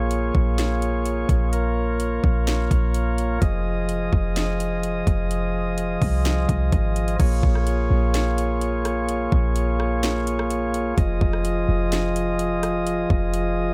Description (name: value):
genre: hip hop, atmospheric cloud-rap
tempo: 127 BPM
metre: 4/4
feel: half-time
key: Bb minor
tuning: A4 = 440 Hz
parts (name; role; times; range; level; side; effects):
- pipe organ, flutes; sustained chords; 0.0-13.7 s; F3 to Eb5; -27 LUFS; equal; none
- clean 808-style bass; bass; 0.0-13.7 s; F1 to C2; -26 LUFS; equal; none
- trap drum kit; drums; 0.1-13.4 s; crash cymbal, hi-hat, kick drum, rim click, snare drum; -27 LUFS; equal; none
room: light reverb, digital ambience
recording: none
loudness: -22 LUFS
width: mono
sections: 0.0-7.2 A section; 7.2-13.7 B section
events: none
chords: 0.0 Bbm7; 3.4 Fm7; 7.2 Bbm7; 11.0 Fm7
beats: 0.11 0.58 1.05 | 1.53 2.00 2.47 2.94 | 3.42 3.89 4.36 4.83 | 5.31 5.78 6.25 6.72 | 7.20 7.67 8.14 8.61 | 9.09 9.56 10.03 10.50 | 10.98 11.45 11.92 12.39 | 12.87 13.34